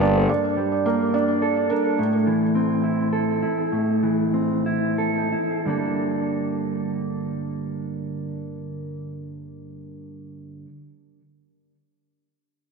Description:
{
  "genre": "rock",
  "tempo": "85-107 BPM",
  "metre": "3/4",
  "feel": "straight",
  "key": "G dorian",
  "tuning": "A4 = 440 Hz",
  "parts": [
    { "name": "felt-muted upright piano", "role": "arpeggios", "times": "0.0-2.0 s", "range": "Bb4 to D5", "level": "-26 LUFS", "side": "right 4 dB", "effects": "slapback echo, digital delay" },
    { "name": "mellow electric guitar", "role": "arpeggios", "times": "0.0-10.7 s", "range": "G2 to A4", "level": "-22 LUFS", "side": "right 1 dB", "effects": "digital delay" }
  ],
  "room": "wet lush hall reverb, RT60 1.9 s, small room ambience",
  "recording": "big arena sound",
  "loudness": "-21 LUFS",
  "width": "side -4 dB against mid",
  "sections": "0.0-5.7 A section; 5.7-9.9 B section",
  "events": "slowing down 2.0-5.7",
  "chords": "0.0 Gmadd9; 2.0 Am; 5.7 Gmadd9",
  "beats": "| 0.29 0.86 1.42 | 1.99 2.55 3.13 | 3.72 4.34 4.99 | 5.67 6.38 7.08 | 7.79 8.49 9.20"
}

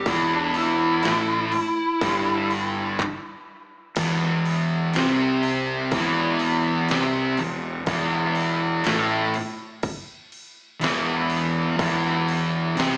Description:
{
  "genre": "stoner and doom metal",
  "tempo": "61 BPM",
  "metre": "4/4",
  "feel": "straight",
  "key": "E minor",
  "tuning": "A4 = 440 Hz",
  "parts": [
    { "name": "fuzz lead guitar", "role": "melody", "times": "0.0-2.5 s", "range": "D4 to E4", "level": "-26 LUFS", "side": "equal", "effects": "distortion, slapback echo, tape echo" },
    { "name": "fuzz fingered electric bass", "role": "bass", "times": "0.0-13.0 s", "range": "E1 to C2", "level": "-32 LUFS", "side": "equal", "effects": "overdrive" },
    { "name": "fuzz guitar", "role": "riff", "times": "0.1-13.0 s", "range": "E2 to C4", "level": "-28 LUFS", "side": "equal", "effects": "distortion, slapback echo" },
    { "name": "thick fuzz guitar", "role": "riff", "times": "0.1-13.0 s", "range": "E2 to C4", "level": "-28 LUFS", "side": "equal", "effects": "distortion, slapback echo" },
    { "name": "dubstep drum kit", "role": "drums", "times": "0.1-13.0 s", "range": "crash cymbal, handclaps, kick drum, snare drum", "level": "-33 LUFS", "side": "equal", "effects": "none" }
  ],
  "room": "light reverb, digital ambience",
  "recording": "live gig heard through the venue's PA, club reverb, small speaker sound",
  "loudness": "-23 LUFS",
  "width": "mono",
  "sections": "0.0-4.0 A section; 4.0-13.0 B section",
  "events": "lead electric guitar solo 0.0-4.0; stop 3.0-4.0",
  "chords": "0.0 Em; 4.0 N.C.",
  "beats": "| 0.06 1.03 2.01 2.99 | 3.97 4.95 5.92 6.90 | 7.88 8.86 9.84 10.82 | 11.79 12.77"
}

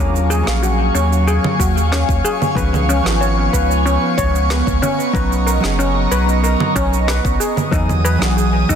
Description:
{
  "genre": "sunset chillout",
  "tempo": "93 BPM",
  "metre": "4/4",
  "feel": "straight",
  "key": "Eb minor",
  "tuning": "A4 = 440 Hz",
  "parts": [
    { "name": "hollow-body jazz guitar", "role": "accompaniment", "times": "0.0-8.8 s", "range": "E3 to A#5", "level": "-22 LUFS", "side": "right 1 dB", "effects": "auto-pan, digital delay" },
    { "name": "airy breathy pad", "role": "sustained chords", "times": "0.0-8.8 s", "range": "Gb3 to D#6", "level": "-20 LUFS", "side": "equal", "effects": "chorus, phaser" },
    { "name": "steel pan", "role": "arpeggios", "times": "0.0-8.8 s", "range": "Db4 to Db5", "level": "-21 LUFS", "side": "left 3 dB", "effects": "digital delay" },
    { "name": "warm sub bass", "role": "bass", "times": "0.0-8.8 s", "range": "F#1 to E2", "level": "-17 LUFS", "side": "equal", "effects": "none" },
    { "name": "electronic cabasa, snare drum and congas", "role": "drums", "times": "0.2-8.8 s", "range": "none", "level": "-24 LUFS", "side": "right 4 dB", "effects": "small room ambience" },
    { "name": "electronic kick drum", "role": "drums", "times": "1.6-8.8 s", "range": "none", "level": "-22 LUFS", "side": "equal", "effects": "small room ambience" }
  ],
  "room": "light reverb",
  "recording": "dense, heavily limited modern master",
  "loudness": "-14 LUFS",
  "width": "side -8 dB against mid",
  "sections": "0.0-8.8 A section",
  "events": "none",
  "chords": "0.0 Ebm11; 2.6 Db7; 4.8 Bmaj9; 7.4 Emaj9",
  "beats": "0.63 1.28 1.92 | 2.57 3.21 3.86 4.50 | 5.15 5.79 6.44 7.08 | 7.73 8.37"
}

